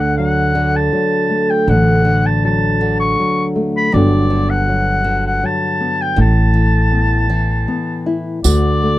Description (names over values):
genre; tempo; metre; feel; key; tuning
acoustic folk duo or small band; 80 BPM; 3/4; straight; D major; A4 = 440 Hz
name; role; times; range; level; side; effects
warm oboe; melody; 0.0-9.0 s; D5 to C#6; -18 LUFS; left 1 dB; none
nylon-string guitar; accompaniment; 0.0-9.0 s; D2 to F#4; -18 LUFS; left 1 dB; none
upright bass; bass; 0.0-9.0 s; G1 to D2; -15 LUFS; right 1 dB; none
tambourine; percussion; 8.4-8.6 s; none; -21 LUFS; right 20 dB; none
room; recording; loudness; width
little or no reverb; dry, close 1970s-style studio recording; -13 LUFS; side -15 dB against mid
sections
0.0-8.4 A section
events
none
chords
0.0 D; 3.9 Gmaj7; 6.2 Asus2; 8.4 D